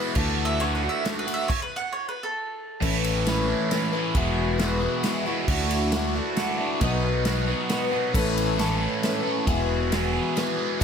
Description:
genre	folk rock and heartland rock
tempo	135 BPM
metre	3/4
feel	straight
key	A major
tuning	A4 = 440 Hz
part	picked twelve-string acoustic guitar	accompaniment	0.0-10.8 s	B2 to B4	-28 LUFS	left 4 dB	lush chorus
part	hand-pumped harmonium	sustained chords	0.0-10.8 s	C#4 to E5	-36 LUFS	right 2 dB	none
part	overdriven electric guitar	riff	0.0-10.8 s	E2 to A4	-27 LUFS	right 2 dB	phaser
part	fingered electric bass	bass	0.2-10.2 s	E1 to D2	-27 LUFS	equal	none
part	natural country drum kit	drums	0.2-10.8 s	crash cymbal, kick drum, ride cymbal, snare drum	-29 LUFS	equal	none
part	mandolin	second line	0.5-2.8 s	A4 to F#5	-29 LUFS	right 2 dB	none
room	light reverb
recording	none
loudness	-22 LUFS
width	side -7 dB against mid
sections	0.0-2.8 A section; 2.8-10.8 B section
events	mandolin solo 0.0-2.8; stop 1.5-2.8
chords	0.2 Dadd9; 1.5 N.C.; 2.8 Aadd9; 4.2 Eadd9; 5.5 Dadd9; 6.8 B; 8.1 Aadd9; 9.5 Eadd9

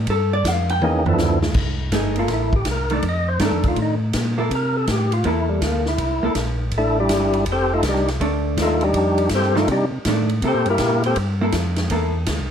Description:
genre	soul jazz organ trio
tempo	162 BPM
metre	4/4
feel	swing 65% on 8ths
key	C mixolydian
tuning	A4 = 440 Hz
part	mellow tonewheel organ	bass	0.0-12.5 s	F1 to C3	-23 LUFS	equal	stopped rotary speaker
part	vintage hollow-body jazz guitar	accompaniment	0.1-12.1 s	Eb3 to G5	-24 LUFS	right 1 dB	none
part	swinging big-band drum kit	drums	0.1-12.4 s	crash cymbal, hi-hat, kick drum, ride cymbal, snare drum, toms	-25 LUFS	equal	none
part	percussive tonewheel organ	melody	0.8-11.2 s	E3 to Eb5	-21 LUFS	left 1 dB	slow rotary speaker, overdrive
room	light reverb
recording	none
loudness	-18 LUFS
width	side -8 dB against mid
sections	0.0-1.6 A section; 1.6-12.5 A section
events	hollow-body jazz guitar solo 0.0-1.6; drum fill 0.8-1.6; tonewheel organ solo 1.6-12.5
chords	0.1 G13; 1.6 C13; 3.0 F13; 4.5 C13; 7.5 F13; 10.4 C13

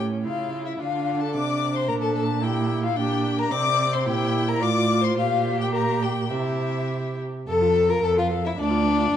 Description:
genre	quick classical-period movement for string quartet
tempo	109 BPM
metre	2/4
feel	rubato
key	F major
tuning	A4 = 441 Hz
part	clear violin	melody	0.0-9.2 s	D5 to D6	-28 LUFS	left 8 dB	none
part	rich violin	second line	0.0-9.2 s	D4 to D5	-25 LUFS	left 3 dB	none
part	warm viola	accompaniment	0.0-9.2 s	C4 to A4	-28 LUFS	right 2 dB	none
part	rich cello	bass	0.0-9.2 s	D2 to D3	-26 LUFS	right 4 dB	none
room	wet recital hall reverb, RT60 1.5 s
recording	dark, warm production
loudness	-21 LUFS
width	side -10 dB against mid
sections	0.0-7.5 A section; 7.5-9.2 B section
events	none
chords	0.0 A; 0.8 F6; 1.9 Bb; 3.0 Gm/Bb; 3.5 Csus2; 4.1 Edim/Bb; 4.6 F/A; 5.2 Gm/Bb; 6.3 C; 7.5 F; 8.6 Dm

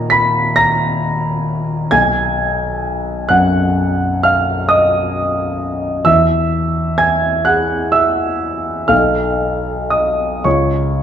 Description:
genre	classical, impressionist solo piano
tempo	37-45 BPM (dotted quarters)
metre	9/8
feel	rubato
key	unclear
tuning	A4 = 439 Hz
part	clear grand piano	solo	0.0-11.0 s	Cb2 to Cb7	-13 LUFS	equal	none
room	wet recital hall reverb, RT60 1.7 s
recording	dark, warm production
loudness	-13 LUFS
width	side -9 dB against mid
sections	0.0-11.0 A section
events	none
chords	0.0 Ebsus2; 1.9 Cb; 6.1 Eadd9; 8.9 Cb7; 10.4 N.C.

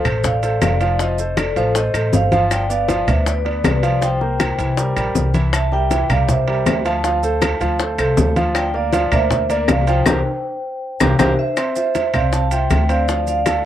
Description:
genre	latin, salsa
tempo	159 BPM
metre	4/4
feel	straight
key	F major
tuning	A4 = 440 Hz
part	vibraphone with hard mallets	melody	0.0-13.7 s	G4 to A5	-21 LUFS	moving between left 3 dB and right 4 dB	auto-pan, cassette tape
part	clear concert grand piano	accompaniment	0.0-13.6 s	E3 to C6	-23 LUFS	right 1 dB	cassette tape
part	upright bass	bass	0.0-13.6 s	F1 to D2	-20 LUFS	equal	none
part	claves	percussion	0.0-13.6 s	none	-25 LUFS	left 6 dB	none
part	maracas	percussion	0.0-13.6 s	none	-34 LUFS	right 9 dB	none
part	congas	percussion	0.1-13.7 s	none	-23 LUFS	equal	none
part	timbales	percussion	0.1-13.6 s	none	-28 LUFS	right 5 dB	none
part	bongos	percussion	0.2-13.7 s	none	-23 LUFS	left 5 dB	none
room	moderate booth ambience, RT60 0.2 s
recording	home recording on cassette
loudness	-15 LUFS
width	side -11 dB against mid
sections	0.0-11.6 A section; 11.6-13.7 B section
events	band accent 10.1-11.6; drum fill 10.6-11.6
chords	0.0 Dm7; 1.0 F7; 2.5 G7; 4.0 C7sus4; 4.8 C7; 7.0 Dm7; 8.6 C9sus4; 10.1 C5; 11.6 F5; 13.1 Dm

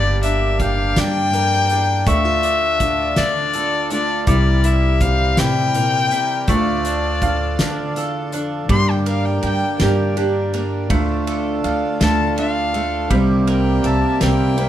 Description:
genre	acoustic folk duo or small band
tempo	54 BPM (dotted quarters)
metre	6/8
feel	straight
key	D minor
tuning	A4 = 440 Hz
part	warm fiddle	melody	0.0-14.7 s	D5 to C6	-20 LUFS	left 4 dB	none
part	fingerpicked steel-string acoustic guitar	accompaniment	0.0-14.7 s	D2 to G4	-23 LUFS	right 1 dB	none
part	hand-pumped harmonium	sustained chords	0.0-14.7 s	C3 to Bb4	-28 LUFS	equal	none
part	mandolin	arpeggios	0.0-14.7 s	G3 to G5	-26 LUFS	right 2 dB	none
part	upright bass	bass	0.0-14.7 s	G1 to D3	-20 LUFS	equal	none
part	loose indie drum kit	drums	0.2-14.7 s	hi-hat, kick drum, ride cymbal, snare drum	-24 LUFS	equal	none
room	moderate studio reverb, RT60 0.7 s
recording	none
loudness	-16 LUFS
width	side -11 dB against mid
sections	0.0-8.7 A section; 8.7-14.7 B section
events	fiddle solo 8.7-14.7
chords	0.0 Gm; 2.1 Dm; 4.3 C7; 6.5 Dm; 8.7 Gm; 10.9 Dm; 13.1 C7

